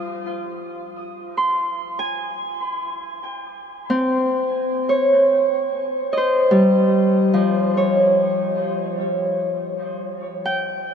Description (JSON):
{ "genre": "ambient", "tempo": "73 BPM", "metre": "4/4", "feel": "straight", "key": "Eb mixolydian", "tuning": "A4 = 436 Hz", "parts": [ { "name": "Celtic harp", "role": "solo", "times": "0.0-10.9 s", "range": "F3 to Eb6", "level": "-18 LUFS", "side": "equal", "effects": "diffuse ambient delay" } ], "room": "wet huge ambient reverb, RT60 7.6 s", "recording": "none", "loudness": "-18 LUFS", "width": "side -7 dB against mid", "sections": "0.0-4.8 A section; 4.8-10.9 B section", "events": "none", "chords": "0.0 Ab6; 4.8 Eb7", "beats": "0.65 | 1.46 2.28 3.10 3.94 | 4.77 5.59 6.41 7.23 | 8.05 8.87 9.68 10.49" }